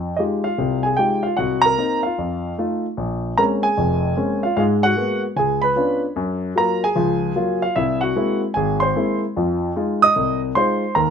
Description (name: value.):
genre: solo jazz.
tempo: 150 BPM.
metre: 4/4.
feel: swing 65% on 8ths.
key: Bb minor.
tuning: A4 = 440 Hz.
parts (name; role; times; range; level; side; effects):
dark concert grand piano; solo; 0.0-11.1 s; F1 to Eb6; -18 LUFS; equal; none.
room: moderate club reverb, RT60 0.7 s.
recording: minimal, uncompressed stereo recording.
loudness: -17 LUFS.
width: side -7 dB against mid.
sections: 0.0-3.0 A section; 3.0-11.1 B section.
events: none.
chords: 0.0 Fm9; 1.4 Cm7b5; 2.2 F7; 3.0 Bbm9; 4.6 Abm9; 5.4 Db7b9; 6.2 Gbmaj7; 7.8 Caug7; 9.4 Fm7.